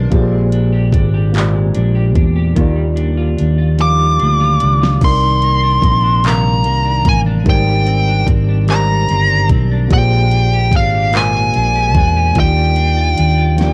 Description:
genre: slow six-eight R&B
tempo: 49 BPM (dotted quarters)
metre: 6/8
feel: straight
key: unclear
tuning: A4 = 439 Hz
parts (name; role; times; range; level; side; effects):
- clean electric guitar; second line; 0.0-13.7 s; Ab2 to G4; -27 LUFS; equal; lush chorus
- mellow tine electric piano; accompaniment; 0.0-13.7 s; C3 to F5; -23 LUFS; equal; plate reverb
- fingered electric bass; bass; 0.0-13.7 s; G1 to E2; -16 LUFS; equal; tube saturation
- smooth R&B drum kit; drums; 0.1-13.7 s; crash cymbal, handclaps, hi-hat, kick drum, snare drum; -18 LUFS; equal; cassette tape
- fuzz lead guitar; melody; 3.8-13.7 s; F5 to D6; -18 LUFS; equal; distortion, cassette tape
room: light reverb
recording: home recording on cassette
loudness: -13 LUFS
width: mono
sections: 0.0-13.7 A section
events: drum fill 3.8-5.0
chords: 0.1 Bb13; 2.6 Ebmaj9; 5.0 Cm9; 7.5 Abmaj9#11; 9.9 Bb13; 12.4 Ebmaj9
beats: | 0.11 1.34 | 2.56 3.79 | 5.01 6.24 | 7.46 8.69 | 9.91 11.13 | 12.36 13.58

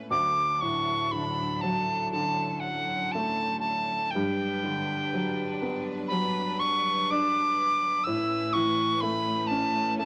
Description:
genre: celtic folk, Celtic slow air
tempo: 58-63 BPM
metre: 4/4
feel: rubato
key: D major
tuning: A4 = 443 Hz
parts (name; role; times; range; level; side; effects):
- felt-muted upright piano; accompaniment; 0.0-10.1 s; D2 to D4; -33 LUFS; equal; none
- clear studio string section; sustained chords; 0.0-10.1 s; F#3 to C#5; -40 LUFS; equal; none
- bright reedy tin whistle; melody; 0.1-10.1 s; F#5 to E6; -29 LUFS; equal; none
room: moderate club reverb, RT60 0.8 s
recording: vinyl crackle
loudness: -28 LUFS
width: mono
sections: 0.1-10.1 A section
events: none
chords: 0.1 Dmaj7; 4.1 Gmaj7; 8.1 Aadd9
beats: | 0.10 1.13 2.15 3.15 | 4.14 5.13 6.12 7.11 | 8.08 9.03 9.98

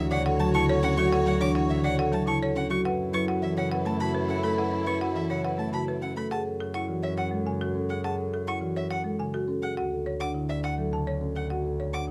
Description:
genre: classical, minimalist pattern music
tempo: 104 BPM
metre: 3/4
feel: straight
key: F# minor from 6.3 s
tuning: A4 = 440 Hz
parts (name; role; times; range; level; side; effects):
- dark clarinet; second line; 0.0-6.1 s; E4 to F#4; -36 LUFS; equal; none
- folk marimba with medium mallets; accompaniment; 0.0-12.1 s; C#3 to C#4; -34 LUFS; equal; none
- warm symphonic string section; sustained chords; 0.0-6.1 s; E4 to C#5; -39 LUFS; equal; none
- warm violin; arpeggios; 0.0-12.0 s; E5 to D6; -36 LUFS; equal; none
- rich double bass; bass; 0.0-12.1 s; D2 to F#2; -34 LUFS; equal; none
- folk marimba with hard mallets; melody; 0.1-12.1 s; G#4 to A5; -36 LUFS; equal; none
- marimba with soft mallets; arpeggios; 0.1-12.1 s; D4 to C#5; -33 LUFS; equal; none
room: light reverb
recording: close, detailed microphones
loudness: -27 LUFS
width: mono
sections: 0.0-6.3 A section; 6.3-12.1 B section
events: none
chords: 0.0 Dmaj7; 2.8 F#m7; 9.8 Dmaj7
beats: 0.54 | 1.12 1.69 2.27 | 2.85 3.42 4.00 | 4.58 5.16 5.73 | 6.31 6.89 7.46 | 8.04 8.62 9.19 | 9.77 10.35 10.92 | 11.50 12.08

